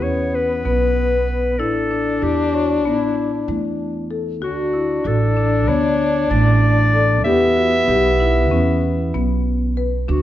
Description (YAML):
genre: contemporary instrumental, chamber music in an uneven meter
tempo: 191 BPM (eighths)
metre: 9/8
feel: straight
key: E dorian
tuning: A4 = 440 Hz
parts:
  - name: warm clarinet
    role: melody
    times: 0.0-10.2 s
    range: E4 to E5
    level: -21 LUFS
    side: equal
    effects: none
  - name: clear French horn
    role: second line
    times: 0.0-9.8 s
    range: B3 to D4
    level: -22 LUFS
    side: left 4 dB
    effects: none
  - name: marimba with medium hard mallets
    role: arpeggios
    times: 0.0-10.2 s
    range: A3 to C#5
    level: -23 LUFS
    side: left 4 dB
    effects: none
  - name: upright bass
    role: bass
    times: 0.0-10.2 s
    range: A1 to E2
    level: -20 LUFS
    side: right 2 dB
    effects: none
room: moderate recital hall reverb, RT60 1.3 s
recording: dark, warm production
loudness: -16 LUFS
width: side -13 dB against mid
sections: 0.0-10.1 A section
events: none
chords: 0.0 E5; 1.6 Asus4; 4.4 Dmaj7; 7.3 Em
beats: 0.02 0.33 0.65 0.96 1.28 | 1.59 1.91 2.22 2.54 2.85 3.17 3.48 3.80 4.11 | 4.43 4.74 5.05 5.37 5.68 6.00 6.31 6.63 6.94 | 7.26 7.57 7.89 8.20 8.52 8.83 9.14 9.46 9.77 | 10.09